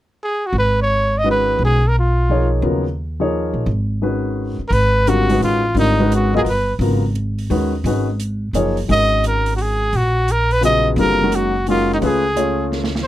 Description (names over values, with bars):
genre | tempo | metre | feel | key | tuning
modal jazz | 173 BPM | 3/4 | swing 64% on 8ths | G# dorian | A4 = 440 Hz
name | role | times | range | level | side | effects
clear trumpet | melody | 0.2-2.5, 4.7-6.7, 8.9-13.1 s | D#4 to D#5 | -18 LUFS | equal | none
upright bass | bass | 0.5-13.0 s | F#1 to D#2 | -19 LUFS | equal | none
warm grand piano | accompaniment | 1.2-12.9 s | C#3 to D#5 | -20 LUFS | left 2 dB | none
open jazz drum kit | drums | 4.7-13.0 s | hi-hat, snare drum | -32 LUFS | right 3 dB | none
room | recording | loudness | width
light reverb | none | -15 LUFS | side -13 dB against mid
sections
0.6-4.7 A section; 4.7-13.1 B section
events
drum fill 12.7-13.1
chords
0.0 N.C.; 0.6 G#m11; 12.0 C#7b13